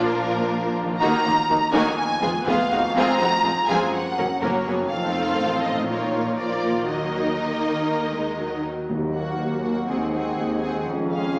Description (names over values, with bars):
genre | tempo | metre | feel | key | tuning
cinematic | 123 BPM | 4/4 | straight | Eb minor | A4 = 441 Hz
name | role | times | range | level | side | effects
warm symphonic violin section | melody | 0.0-11.4 s | Bb4 to Bb5 | -28 LUFS | equal | none
warm symphonic violin section | second line | 0.0-11.4 s | Cb4 to Bb4 | -30 LUFS | equal | none
rich symphonic viola section | accompaniment | 0.0-11.4 s | Eb3 to Db4 | -30 LUFS | equal | none
concert harp | arpeggios | 0.0-11.4 s | F2 to Bb4 | -36 LUFS | equal | none
dark symphonic cello section | bass | 0.0-11.4 s | Eb2 to Eb3 | -32 LUFS | equal | none
warm studio double bass section | bass | 0.0-11.4 s | F1 to Eb2 | -35 LUFS | equal | none
mellow French horn section | sustained chords | 8.9-11.4 s | Gb3 to Db4 | -32 LUFS | equal | none
timpani | percussion | 8.9-9.6 s | Eb3 | -38 LUFS | equal | none
room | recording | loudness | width
wet scoring stage reverb, RT60 1.6 s | heard from further back in the room, small speaker sound | -23 LUFS | mono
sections
0.0-8.9 A section; 8.9-11.4 B section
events
none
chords
0.0 Bb; 1.0 Ebm; 2.0 Fdim; 3.0 Fm; 3.9 Gb; 4.9 F7; 5.9 Bbsus4; 6.4 Bb; 6.9 Ebm; 9.9 Ab7/Eb; 10.9 Db/F